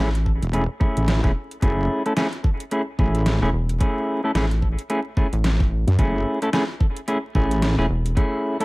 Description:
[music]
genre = glitch hop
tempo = 110 BPM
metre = 4/4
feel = swing 59% on 16ths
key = F# minor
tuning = A4 = 439 Hz
[part]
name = semi-hollow electric guitar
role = stabs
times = 0.0-8.6 s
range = A3 to A4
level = -24 LUFS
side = equal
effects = sidechain pumping, low-pass filter, digital delay
[part]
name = rubbery square bass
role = bass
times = 0.0-8.2 s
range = E1 to A1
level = -22 LUFS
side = equal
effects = none
[part]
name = dubstep drum kit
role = drums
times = 0.2-8.6 s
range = hi-hat, snare drum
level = -26 LUFS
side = equal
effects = none
[part]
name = electronic kick drum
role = drums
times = 0.3-8.3 s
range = none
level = -20 LUFS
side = equal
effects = none
[part]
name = wobble bass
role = bass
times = 0.4-7.8 s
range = E1 to F#2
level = -21 LUFS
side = equal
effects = chorus, tube saturation
[sound]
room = light reverb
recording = vinyl crackle, faint mains hum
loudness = -19 LUFS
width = side -24 dB against mid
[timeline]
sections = 0.0-8.6 A section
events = none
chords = 0.0 F#m9 (rootless)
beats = 0.53 1.08 | 1.62 2.17 2.71 3.26 | 3.81 4.35 4.90 5.44 | 5.99 6.53 7.08 7.62 | 8.17

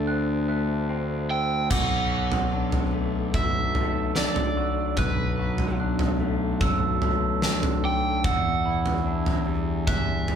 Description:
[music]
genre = post-rock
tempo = 74 BPM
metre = 4/4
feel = straight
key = unclear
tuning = A4 = 439 Hz
[part]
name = electric guitar through a small old amp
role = arpeggios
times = 0.0-10.4 s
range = E2 to F#4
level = -31 LUFS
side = left 2 dB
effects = none
[part]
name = glockenspiel with rubber mallets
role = arpeggios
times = 0.0-10.4 s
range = D6 to F#6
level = -33 LUFS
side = right 5 dB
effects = none
[part]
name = fuzz picked electric bass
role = bass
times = 0.0-10.4 s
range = B1 to E2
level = -28 LUFS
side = equal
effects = overdrive
[part]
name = overdriven semi-hollow guitar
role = melody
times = 1.3-10.4 s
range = B4 to G5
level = -29 LUFS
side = right 4 dB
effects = none
[part]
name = huge arena drum kit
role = drums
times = 1.7-10.4 s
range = crash cymbal, kick drum, snare drum, toms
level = -26 LUFS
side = left 1 dB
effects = none
[sound]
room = wet studio reverb, RT60 0.8 s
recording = band playing live in one room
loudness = -22 LUFS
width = side -8 dB against mid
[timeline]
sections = 0.0-1.7 A section; 1.7-10.4 B section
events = none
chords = 0.0 D7; 1.7 Bm7; 8.2 Em7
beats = 0.07 0.89 | 1.71 2.53 3.34 4.16 | 4.98 5.79 6.61 7.43 | 8.24 9.06 9.88

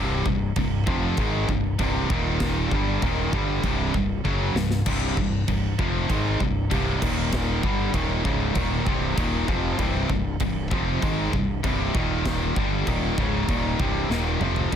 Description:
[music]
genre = heavy metal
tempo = 97 BPM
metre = 4/4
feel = straight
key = C minor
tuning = A4 = 442 Hz
[part]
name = heavy high-gain guitar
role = riff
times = 0.0-14.8 s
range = C2 to Ab3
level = -28 LUFS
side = left 9 dB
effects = distortion
[part]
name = high-gain distorted guitar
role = riff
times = 0.0-14.8 s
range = C2 to Ab3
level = -29 LUFS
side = right 11 dB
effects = distortion
[part]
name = overdriven electric guitar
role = riff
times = 0.0-14.8 s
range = C2 to Ab3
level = -30 LUFS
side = equal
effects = none
[part]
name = fuzz fingered electric bass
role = bass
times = 0.0-14.8 s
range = C1 to Ab1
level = -28 LUFS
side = equal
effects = overdrive
[part]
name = big rock drum kit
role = drums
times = 0.3-14.8 s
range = crash cymbal, kick drum, snare drum, toms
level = -28 LUFS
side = equal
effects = none
[sound]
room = little or no reverb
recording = dense, heavily limited modern master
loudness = -22 LUFS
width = side -8 dB against mid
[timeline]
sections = 0.0-14.7 A section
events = half time 0.0-14.7; drum fill 4.2-4.9, 14.1-14.7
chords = 0.0 Cm; 2.1 Eb5; 2.7 Cm; 7.0 Eb5; 7.6 Cm; 11.9 Eb5; 12.6 Cm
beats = 0.56 1.18 1.79 | 2.41 3.02 3.63 4.25 | 4.86 5.48 6.09 6.71 | 7.33 7.94 8.56 9.17 | 9.79 10.41 11.02 11.64 | 12.26 12.88 13.49 14.11 | 14.73

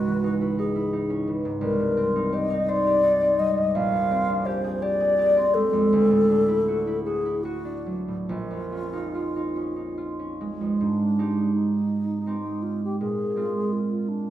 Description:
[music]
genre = classical, impressionist duo for alto flute and harp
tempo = 45-58 BPM (dotted quarters)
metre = 6/8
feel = rubato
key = unclear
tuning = A4 = 438 Hz
[part]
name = mellow hollow alto flute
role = melody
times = 0.0-14.3 s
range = D4 to F5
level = -24 LUFS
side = left 2 dB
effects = none
[part]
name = concert harp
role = accompaniment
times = 0.0-14.3 s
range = Bb1 to C5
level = -25 LUFS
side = right 2 dB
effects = none
[sound]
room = wet recital hall reverb, RT60 1.3 s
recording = none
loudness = -22 LUFS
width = side -12 dB against mid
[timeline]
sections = 0.0-10.8 A section; 10.8-14.3 B section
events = none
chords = 0.0 C#madd9; 1.6 Cm7; 3.7 Bb13; 5.9 Dadd9; 8.3 Bbm7; 10.8 Abmaj7; 13.0 Bb7sus2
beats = 0.59 | 1.63 2.68 | 3.74 4.81 | 5.91 7.03 | 8.28 9.56 | 10.80 11.90 | 13.00 14.07

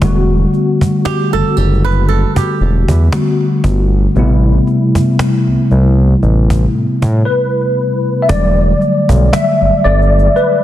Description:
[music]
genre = contemporary R&B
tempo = 58 BPM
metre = 4/4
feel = swing 54% on 16ths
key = E minor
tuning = A4 = 442 Hz
[part]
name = mellow tine electric piano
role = accompaniment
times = 0.0-10.6 s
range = B2 to E5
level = -13 LUFS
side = left 1 dB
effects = ensemble chorus
[part]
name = smooth synth bass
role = bass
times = 0.0-10.3 s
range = E1 to A2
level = -12 LUFS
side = equal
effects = none
[part]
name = cajon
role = drums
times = 0.0-10.5 s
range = none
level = -18 LUFS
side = equal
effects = none
[part]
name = flamenco guitar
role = arpeggios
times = 1.1-3.9 s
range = G4 to B4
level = -19 LUFS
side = right 10 dB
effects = digital delay
[sound]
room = light reverb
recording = dense, heavily limited modern master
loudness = -10 LUFS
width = side -13 dB against mid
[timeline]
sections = 0.0-8.3 A section; 8.3-10.6 B section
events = tine electric piano solo 8.3-10.6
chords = 0.0 Em11; 4.2 Am9; 8.3 Em11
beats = | 0.02 1.05 2.09 3.12 | 4.16 5.19 6.23 7.26 | 8.29 9.33 10.36

